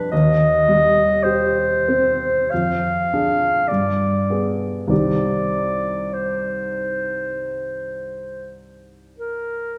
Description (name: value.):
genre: classical, romantic duo for clarinet and grand piano.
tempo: 45-56 BPM.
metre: 4/4.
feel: rubato.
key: C minor.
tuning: A4 = 440 Hz.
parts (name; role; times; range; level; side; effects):
warm clarinet; melody; 0.0-9.8 s; Bb4 to F5; -22 LUFS; equal; none.
warm grand piano; accompaniment; 0.0-9.8 s; C2 to Ab4; -24 LUFS; equal; none.
room: wet concert hall reverb, RT60 1.7 s.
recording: heard from further back in the room.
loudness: -20 LUFS.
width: mono.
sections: 0.0-9.8 A section.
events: none.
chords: 0.1 Cm/Eb; 2.5 Ddim/F; 3.7 G; 4.9 Cm.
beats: | 0.12 1.23 2.51 3.69 | 4.91 6.15 7.40 8.61.